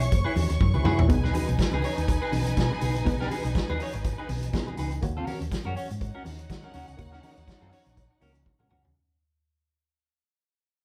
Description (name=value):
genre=disco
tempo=122 BPM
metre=4/4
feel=swing 56% on 16ths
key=B major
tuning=A4 = 440 Hz
part: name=warm studio violin section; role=second line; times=0.0-8.9 s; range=D#4 to C#6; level=-37 LUFS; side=equal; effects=none
part: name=clean electric guitar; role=accompaniment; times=0.0-8.9 s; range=C#4 to C#5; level=-36 LUFS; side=equal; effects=phaser
part: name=muted clav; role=accompaniment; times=0.0-9.0 s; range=B2 to C#5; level=-34 LUFS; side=equal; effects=none
part: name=hollow-body short-scale fingered electric bass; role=bass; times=0.0-8.9 s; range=F#1 to D#3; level=-31 LUFS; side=equal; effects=none
part: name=vintage drum kit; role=drums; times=0.0-8.9 s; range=hi-hat, kick drum, snare drum, toms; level=-30 LUFS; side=equal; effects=none
part: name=congas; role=percussion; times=0.4-8.8 s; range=none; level=-39 LUFS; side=equal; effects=none
room=moderate large studio reverb, RT60 0.9 s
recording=band playing live in one room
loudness=-27 LUFS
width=mono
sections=0.0-1.1 A section; 1.1-9.0 B section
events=drum fill 0.6-1.1, 8.5-9.0; fade-out 1.1-9.0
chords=0.0 F#9sus4; 1.1 B6; 5.0 D#m7